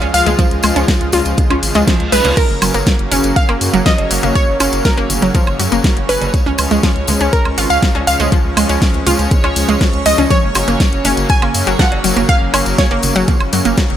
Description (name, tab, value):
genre	progressive house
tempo	121 BPM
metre	4/4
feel	straight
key	F# major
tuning	A4 = 440 Hz
part	wide unison pluck	melody	0.0-13.7 s	A#4 to G#5	-19 LUFS	right 1 dB	sidechain pumping, tape echo
part	supersaw pad	sustained chords	0.0-14.0 s	C#3 to E#4	-20 LUFS	equal	sidechain pumping
part	analog pluck	arpeggios	0.0-13.7 s	E#3 to E#4	-18 LUFS	equal	chorus, sidechain pumping, digital delay
part	saturated sub bass	bass	0.0-14.0 s	F#1 to F#2	-20 LUFS	equal	sidechain pumping
part	pop drum kit	drums	0.0-14.0 s	crash cymbal, hi-hat, snare drum, woodblock	-20 LUFS	equal	none
part	cowbell and congas	percussion	0.0-13.4 s	none	-27 LUFS	right 2 dB	none
part	tambourine	percussion	0.1-13.9 s	none	-25 LUFS	left 3 dB	none
part	electronic kick drum	drums	0.4-13.9 s	none	-14 LUFS	equal	none
part	reverse cymbal	sound effects	1.6-2.4 s	none	-25 LUFS	right 3 dB	none
part	backwards swelling texture	texture	4.0-14.0 s	C#5 to C#6	-28 LUFS	right 1 dB	built-in reverb, sidechain pumping
room	light reverb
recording	none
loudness	-11 LUFS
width	side -10 dB against mid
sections	0.0-14.0 A section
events	reverse cymbal 1.6-2.4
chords	0.0 C#; 2.4 F#; 6.3 C#; 10.3 F#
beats	| 0.39 0.88 1.38 1.88 | 2.37 2.87 3.36 3.86 | 4.36 4.85 5.35 5.84 | 6.34 6.83 7.33 7.83 | 8.32 8.82 9.31 9.81 | 10.30 10.80 11.30 11.79 | 12.29 12.78 13.28 13.78